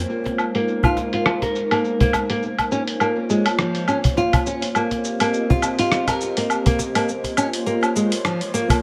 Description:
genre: organic downtempo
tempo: 103 BPM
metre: 4/4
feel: swing 56% on 16ths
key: Bb dorian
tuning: A4 = 440 Hz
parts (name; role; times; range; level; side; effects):
- airy breathy pad; sustained chords; 0.0-8.8 s; Ab3 to Eb5; -28 LUFS; equal; chorus
- nylon-string guitar; arpeggios; 0.1-8.8 s; F3 to Bb4; -24 LUFS; equal; low-pass filter, digital delay
- dusty soul sampler-style drum kit; drums; 0.1-8.8 s; cabasa, hi-hat, rim click, woodblock; -26 LUFS; equal; low-pass filter on perc, low-pass filter on hats, low-pass filter on snare, low-pass filter on room
- cajon; percussion; 0.3-8.8 s; none; -23 LUFS; equal; none
room: moderate lush hall reverb, RT60 2.7 s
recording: none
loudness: -21 LUFS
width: mono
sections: 0.1-8.8 A section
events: none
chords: 0.1 Ab6; 2.4 Bbm; 4.8 Cm7; 7.1 Bbm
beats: | 0.09 0.68 1.26 1.84 | 2.42 3.01 3.59 4.17 | 4.75 5.34 5.92 6.50 | 7.08 7.67 8.25

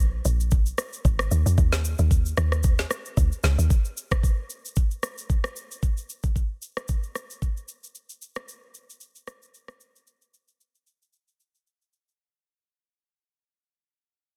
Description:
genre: amapiano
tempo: 113 BPM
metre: 4/4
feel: swing 55% on 16ths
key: unclear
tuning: A4 = 440 Hz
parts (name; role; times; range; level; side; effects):
- woody log drum bass; bass; 0.0-3.7 s; G#1 to E#2; -25 LUFS; equal; none
- smooth R&B drum kit; drums; 0.3-12.2 s; kick drum, rim click, shaker, snare drum; -27 LUFS; equal; soft clipping on snare
room: little or no reverb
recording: dense, heavily limited modern master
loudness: -25 LUFS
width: mono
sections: 0.0-3.7 A section; 3.7-12.2 B section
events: fade-out 3.7-12.2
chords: none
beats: 0.52 1.05 | 1.58 2.11 2.64 3.17 | 3.70 4.23 4.76 5.30 | 5.83 6.36 6.89 7.42 | 7.95 8.48 9.01 9.54 | 10.07 10.61 11.14 11.67

